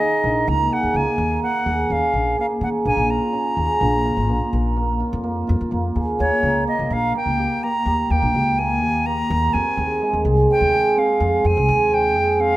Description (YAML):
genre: contemporary instrumental, chamber music in an uneven meter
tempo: 126 BPM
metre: 7/4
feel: straight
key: Bb minor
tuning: A4 = 443 Hz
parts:
  - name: bright wooden flute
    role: melody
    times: 0.0-12.6 s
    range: Db5 to Bb5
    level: -22 LUFS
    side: equal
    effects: none
  - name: cimbalom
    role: arpeggios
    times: 0.0-12.6 s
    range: Ab3 to Bb4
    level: -20 LUFS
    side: right 2 dB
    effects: none
  - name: upright bass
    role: bass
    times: 0.0-12.6 s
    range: Ab1 to Eb3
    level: -23 LUFS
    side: left 1 dB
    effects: none
room: light reverb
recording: close, detailed microphones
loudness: -17 LUFS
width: side -16 dB against mid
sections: 0.0-6.2 A section; 6.2-12.6 B section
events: none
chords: 0.0 Eb7sus4; 2.9 Bbm7; 6.2 Eb7; 9.5 Fmadd9